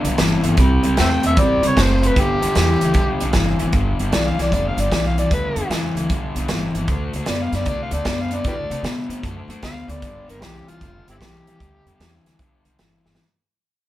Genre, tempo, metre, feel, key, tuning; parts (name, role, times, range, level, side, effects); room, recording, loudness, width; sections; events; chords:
electric blues shuffle; 152 BPM; 4/4; swing 66% on 8ths; G mixolydian; A4 = 440 Hz
overdriven harmonica; melody; 0.0-12.2 s; C4 to G5; -23 LUFS; left 1 dB
raw garage guitar; riff; 0.0-13.2 s; G2 to B3; -22 LUFS; left 1 dB; overdrive
upright bass; bass; 0.0-13.2 s; F1 to C3; -23 LUFS; equal
natural country drum kit; drums; 0.0-13.2 s; hi-hat, kick drum, snare drum; -22 LUFS; right 1 dB
light reverb; band playing live in one room; -17 LUFS; side -14 dB against mid
0.0-13.2 A section
fade-out 1.8-13.2; drum fill 13.0
0.0 G; 0.6 C; 2.2 G; 6.9 D; 10.0 G